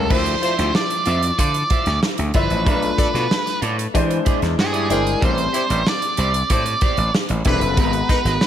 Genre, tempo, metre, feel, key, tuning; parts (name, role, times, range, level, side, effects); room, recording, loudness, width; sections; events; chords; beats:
polished 1980s jazz-funk pop; 94 BPM; 4/4; straight; A4 = 440 Hz
octave-fuzz lead guitar; melody; 0.0-8.5 s; G#4 to D5; -22 LUFS; right 2 dB; distortion
warm grand piano; accompaniment; 0.0-8.5 s; F3 to A#5; -25 LUFS; left 4 dB; lush chorus
gritty slap bass; bass; 0.0-8.4 s; E1 to E3; -22 LUFS; equal; overdrive
electric guitar at the edge of break-up; riff; 0.1-8.4 s; B3 to E5; -28 LUFS; right 4 dB; tube saturation, wide subtle chorus
modern studio drum kit; drums; 0.1-8.5 s; crash cymbal, hi-hat, kick drum, snare drum; -21 LUFS; equal; gated reverb
warm horn section; second line; 0.4-8.2 s; F#3 to G5; -29 LUFS; left 3 dB
light reverb; -16 LUFS; side -10 dB against mid
0.1-8.5 A section
0.1 Dm9; 2.7 Bm7b5; 3.9 E7alt; 5.2 Am7; 7.8 G#m9
| 0.11 0.75 1.39 2.03 | 2.67 3.31 3.95 4.58 | 5.22 5.86 6.50 7.14 | 7.78 8.41